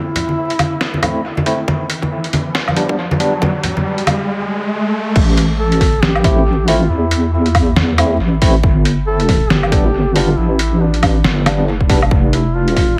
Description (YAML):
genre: deep dubstep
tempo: 138 BPM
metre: 4/4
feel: swing 59% on 16ths, half-time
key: unclear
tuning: A4 = 440 Hz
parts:
  - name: mellow duduk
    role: melody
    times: 0.0-1.2, 5.6-13.0 s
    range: D4 to A4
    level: -24 LUFS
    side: equal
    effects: dub echo
  - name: riser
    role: sound effects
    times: 0.8-5.2 s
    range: none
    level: -24 LUFS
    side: equal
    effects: none
  - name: trip hop sampler-style drum kit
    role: drums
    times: 0.2-12.9 s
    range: crash cymbal, hi-hat, snare drum, woodblock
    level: -22 LUFS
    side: equal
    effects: high-pass filter on hats, high-pass filter on snare, high-pass filter on perc, high-pass filter on cymbals, high-pass filter on room, dub echo
  - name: congas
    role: percussion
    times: 0.2-4.2 s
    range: none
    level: -22 LUFS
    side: equal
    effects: dub echo
  - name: overdriven tine electric piano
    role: stabs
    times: 1.0-3.3, 6.2-12.0 s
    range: G3 to E4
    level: -24 LUFS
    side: equal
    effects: fast tremolo, low-pass filter, dub echo
  - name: electronic kick drum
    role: drums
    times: 1.0-12.9 s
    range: none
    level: -17 LUFS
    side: equal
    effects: high-pass filter on kick
  - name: deep soft wobble bass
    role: bass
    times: 5.2-13.0 s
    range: F1 to E2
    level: -18 LUFS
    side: equal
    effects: chorus
room: light reverb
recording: echo-heavy mix, vinyl crackle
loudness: -15 LUFS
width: mono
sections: 0.0-5.2 A section; 5.2-13.0 B section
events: build-up 0.0-5.2; filter sweep on tine electric piano 0.0-5.2; riser 0.8-5.2; drop 5.2-13.0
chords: 0.0 Am; 1.7 G; 5.2 Am; 8.6 G; 12.1 N.C.